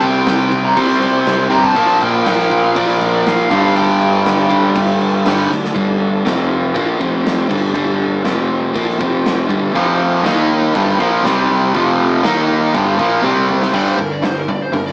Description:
hard rock; 120 BPM; 4/4; straight; G minor; A4 = 440 Hz
lead guitar through a small cranked amp; melody; 0.0-5.2, 13.8-14.9 s; Bb4 to C6; -19 LUFS; equal; overdrive
overdriven tonewheel organ; sustained chords; 0.0-13.7 s; F3 to G5; -27 LUFS; equal
crunchy overdriven guitar; riff; 0.0-14.9 s; F2 to Eb4; -16 LUFS; equal
distorted electric guitar; riff; 0.0-5.5, 9.8-14.9 s; F2 to Eb4; -15 LUFS; right 1 dB; overdrive
fuzz picked electric bass; bass; 0.0-14.9 s; F1 to Bb2; -24 LUFS; equal; overdrive
big rock drum kit; drums; 0.0-14.9 s; crash cymbal, hi-hat, kick drum, snare drum, toms; -21 LUFS; equal
light reverb; rough rehearsal-room recording, tube saturation, small speaker sound; -12 LUFS; side -28 dB against mid
0.0-5.8 A section; 5.8-13.7 B section; 13.7-14.9 C section
drum fill 5.5, 13.2-13.7; lead electric guitar solo 13.7-14.9
0.0 C5; 1.8 Bb; 3.5 G5; 6.3 F5; 6.8 Gm; 7.0 F5; 7.5 G5; 8.3 F5; 8.8 Gm; 9.0 F5; 9.5 G5; 9.8 F5; 10.3 Eb5; 10.7 F5; 11.2 C5; 11.7 F5; 12.2 Eb5; 12.7 F5; 13.2 C5; 13.7 G5

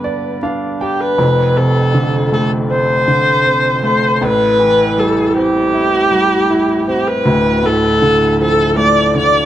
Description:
pop; 79 BPM; 4/4; straight; A4 = 436 Hz
dark viola; melody; 0.0-9.5 s; G4 to D5; -14 LUFS; equal
clear grand piano; accompaniment; 0.0-9.5 s; D1 to G5; -15 LUFS; right 1 dB
moderate plate reverb, RT60 2.8 s; dark, warm production; -11 LUFS; side -12 dB against mid
0.0-1.2 A section; 1.2-9.5 B section
grand piano fill 0.0-1.2
0.0 G; 1.2 F6; 4.2 Am7; 7.3 Dm

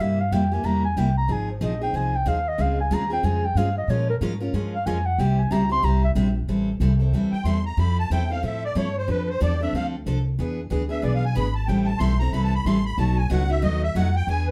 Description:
acoustic string swing (jazz manouche); 185 BPM; 4/4; swing 61% on 8ths; A minor from 6.5 s; A4 = 441 Hz
breathy clarinet; melody; 0.0-6.1 s; Bb4 to C6; -28 LUFS; equal
picked steel-string acoustic guitar; accompaniment; 0.0-14.5 s; B2 to Bb4; -28 LUFS; equal
upright bass; bass; 0.0-14.5 s; Ab1 to Bb2; -26 LUFS; equal
musette accordion; second line; 7.3-14.5 s; B4 to C6; -31 LUFS; equal
moderate studio reverb, RT60 0.6 s; dark, warm production; -23 LUFS; mono
0.0-6.5 A section; 6.5-14.5 A section
clarinet solo 0.0-6.5; accordion solo 6.5-14.5
0.0 C7; 1.3 Fm7; 2.6 Dbmaj7; 3.9 Bbm7; 5.2 C; 6.5 Am7; 7.8 Fmaj7; 9.1 Dm7; 10.4 E7; 11.7 Am7; 13.0 B7

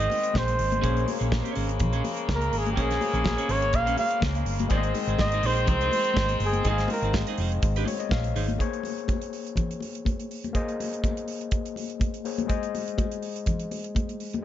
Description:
disco; 124 BPM; 4/4; straight; Bb minor; A4 = 439 Hz
warm flugelhorn; melody; 0.0-7.1 s; G4 to F5; -28 LUFS; equal; tape echo
clean electric guitar; accompaniment; 0.0-8.5 s; Db4 to Eb5; -36 LUFS; right 8 dB
overdriven tine electric piano; accompaniment; 0.0-14.4 s; Ab3 to F5; -33 LUFS; moving between left 11 dB and left 1 dB; auto-pan
muted French horn section; sustained chords; 0.0-8.6 s; Db3 to C4; -32 LUFS; equal
hollow-body short-scale fingered electric bass; bass; 0.0-8.6 s; F1 to Db2; -28 LUFS; right 1 dB
damped 70s drum kit; drums; 0.0-14.4 s; hi-hat, kick drum, snare drum; -30 LUFS; right 1 dB
congas; percussion; 0.1-14.4 s; -34 LUFS; left 5 dB
light reverb, studio reverb; nothing above 7.6 kHz; -24 LUFS; side -11 dB against mid
0.0-8.6 A section; 8.6-14.4 B section
flugelhorn solo 0.0-8.6; tine electric piano fill 7.6-8.6
0.0 Ab; 0.8 Bbm9; 4.7 Ab; 8.6 Bbm9; 12.5 Ab

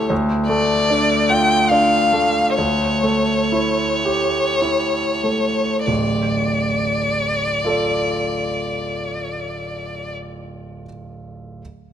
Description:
classical, romantic duo for violin and grand piano; 30-53 BPM (dotted quarters); 6/8; rubato; D minor; A4 = 440 Hz
rich violin; melody; 0.0-10.1 s; C#5 to G5; -19 LUFS; left 2 dB
bright grand piano; accompaniment; 0.0-11.6 s; D1 to D5; -21 LUFS; right 1 dB
moderate concert hall reverb, RT60 2.2 s; close, detailed microphones; -16 LUFS; side -9 dB against mid
0.0-5.9 A section; 5.9-9.4 B section
slowing down 0.0-5.9
0.1 Dm; 2.6 A7/D; 5.9 Dm

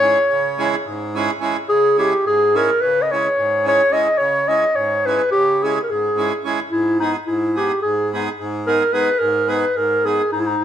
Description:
balkan folk; 215 BPM (eighths); 9/8; straight; C# dorian sharp4; A4 = 443 Hz
mellow clarinet; melody; 0.0-10.6 s; D#4 to D#5; -16 LUFS; equal
accordion; accompaniment; 0.0-10.6 s; G#2 to G#4; -23 LUFS; right 3 dB
wet stone room reverb, RT60 1.4 s; band playing live in one room; -16 LUFS; side -10 dB against mid
0.0-1.7 A section; 1.7-10.6 A section
0.0 C#m; 6.7 G#m

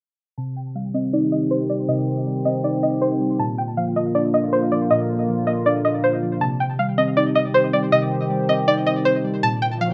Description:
hip hop; 159 BPM; 4/4; half-time; C minor; A4 = 440 Hz
string-like resonator pluck; melody; 0.4-9.9 s; C5 to A5; -23 LUFS; equal; chorus, low-pass filter, digital delay
muted felt-like synth keys; accompaniment; 0.4-9.9 s; Bb2 to Eb4; -25 LUFS; equal; chorus, low-pass filter
sweeping resonant pad; sustained chords; 0.4-9.9 s; D3 to G4; -28 LUFS; equal; chorus, low-pass filter
riser; sound effects; 9.6-9.9 s; -36 LUFS; equal
wet studio reverb, RT60 0.5 s; rough home demo mix; -21 LUFS; mono
0.4-9.9 A section
filter sweep 0.4-9.9; riser 9.6-9.9
0.4 Cm; 3.4 Bb; 6.4 Cm; 9.4 Bb

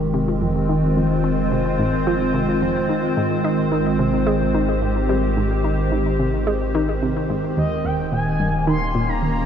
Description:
ambient, sequencer-driven space music; 109 BPM; 4/4; straight; Ab major; A4 = 440 Hz
evolving wavetable pad; sustained chords; 0.0-9.5 s; Eb3 to Db5; -20 LUFS; equal; chorus, built-in reverb
analog pluck; riff; 0.0-9.5 s; Eb2 to Eb4; -24 LUFS; equal; chorus, ping-pong delay
round analog bass; bass; 0.0-9.5 s; Eb1 to Ab1; -26 LUFS; equal
expressive portamento lead; melody; 7.6-9.5 s; Eb5 to C6; -25 LUFS; left 1 dB; lush chorus, ping-pong delay
wet huge ambient reverb, RT60 8.2 s; dark, warm production; -18 LUFS; side -8 dB against mid
0.0-9.5 A section
0.0 Fm7; 3.2 Abmaj7; 7.6 Eb7sus4

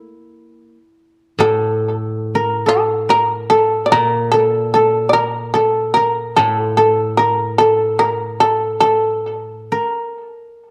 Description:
japanese traditional, Japanese chamber music; 45-49 BPM; 4/4; rubato; A4 = 440 Hz
shamisen; melody; 0.0-10.0 s; A4 to D5; -18 LUFS; equal; tape echo
koto; second line; 0.0-10.7 s; A4 to Bb4; -20 LUFS; equal
koto; accompaniment; 0.0-9.8 s; A2 to E4; -26 LUFS; equal
wet spring reverb, RT60 1.2 s, small room ambience; dark, warm production; -16 LUFS; mono
0.0-1.4 A section; 1.4-10.7 B section

